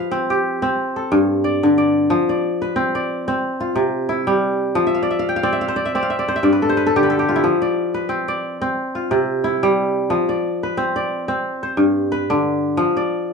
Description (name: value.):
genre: west african traditional.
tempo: 90 BPM.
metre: 4/4.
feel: swing 55% on 16ths.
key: F lydian.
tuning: A4 = 440 Hz.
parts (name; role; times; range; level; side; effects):
kora; solo; 0.0-13.3 s; G2 to G5; -17 LUFS; equal; none.
room: light reverb.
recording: small room ambience.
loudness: -17 LUFS.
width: side -5 dB against mid.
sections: 0.0-2.1 A section; 2.1-12.8 B section.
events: kora fill 4.9-7.4.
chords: 0.0 F5; 0.8 G5; 2.1 F5; 3.4 C; 4.8 F5; 6.1 G5; 7.4 F5; 8.8 C; 10.1 F5; 11.4 G; 12.8 F5.